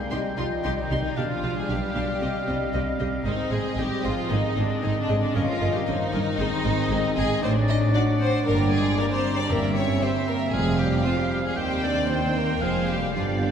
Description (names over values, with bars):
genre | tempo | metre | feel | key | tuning
quick classical-period movement for symphony orchestra | 115 BPM | 4/4 | straight | C minor | A4 = 439 Hz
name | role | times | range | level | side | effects
bright oboe | second line | 0.0-13.5 s | D5 to G5 | -34 LUFS | right 1 dB | none
large flute ensemble | second line | 0.0-13.5 s | Bb4 to Bb5 | -34 LUFS | left 2 dB | none
mellow clarinet | second line | 0.0-13.5 s | B3 to Eb4 | -32 LUFS | right 1 dB | none
clear bassoon | accompaniment | 0.0-13.5 s | D3 to Bb3 | -34 LUFS | equal | none
warm French horn section | sustained chords | 0.0-13.5 s | Db3 to Eb4 | -31 LUFS | left 3 dB | none
warm studio violin section | melody | 0.1-13.5 s | D5 to C6 | -38 LUFS | left 3 dB | none
warm studio violin section | second line | 0.1-13.5 s | Db4 to Eb5 | -30 LUFS | left 2 dB | none
rich studio viola section | accompaniment | 0.1-13.5 s | B3 to C5 | -34 LUFS | equal | none
dark studio cello section | bass | 0.1-13.5 s | Eb2 to C3 | -28 LUFS | right 1 dB | none
rich studio double bass section | bass | 0.1-13.5 s | F1 to Eb2 | -29 LUFS | right 2 dB | none
timpani | percussion | 9.5-10.2 s | G2 | -36 LUFS | equal | none
room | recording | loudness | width
wet church reverb, RT60 3.4 s | recorded in a church or concert hall | -22 LUFS | side -8 dB against mid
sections
0.0-13.5 A section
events
none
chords
0.0 Cm; 1.2 G7/B; 2.2 Cm; 3.3 Ab; 5.4 Eb7/G; 6.4 Ab; 7.4 D/A; 8.5 Gm; 9.5 C/G; 10.5 F5; 11.6 Cm/Eb; 12.6 Fm